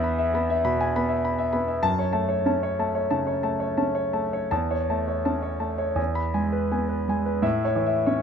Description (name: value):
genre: classical, romantic character piece for solo piano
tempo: 78-101 BPM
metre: 4/4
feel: rubato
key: A major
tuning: A4 = 438 Hz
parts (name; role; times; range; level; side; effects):
- clear concert grand piano; solo; 0.0-8.2 s; E2 to B5; -22 LUFS; equal; none
room: moderate large studio reverb, RT60 0.9 s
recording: minimal, uncompressed stereo recording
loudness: -22 LUFS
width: side -7 dB against mid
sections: 0.0-7.4 A section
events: none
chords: 0.0 E; 1.8 F#m; 4.5 A/E; 6.0 E; 7.4 A